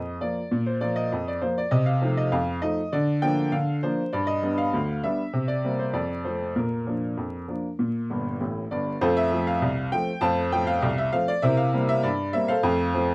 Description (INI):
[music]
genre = ragtime piano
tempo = 99 BPM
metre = 2/4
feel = straight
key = Bb major, F major from 9.0 s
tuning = A4 = 440 Hz
[part]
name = clear upright piano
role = solo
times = 0.0-13.1 s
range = G1 to A5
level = -22 LUFS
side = equal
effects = none
[sound]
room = light reverb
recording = dry, close 1970s-style studio recording, vinyl crackle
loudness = -22 LUFS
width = side -27 dB against mid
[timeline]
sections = 0.0-9.0 A section; 9.0-13.1 B section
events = upright piano fill 8.1-9.0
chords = 0.0 Bb5; 1.7 F7/C; 2.9 Bb/D; 4.1 G; 5.3 C5; 5.9 F; 6.6 Bb; 9.0 F; 11.4 C7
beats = | 0.51 1.11 | 1.72 2.32 | 2.92 3.53 | 4.13 4.73 | 5.34 5.95 | 6.56 7.17 | 7.79 8.40 | 9.01 9.62 | 10.23 10.83 | 11.44 12.04 | 12.65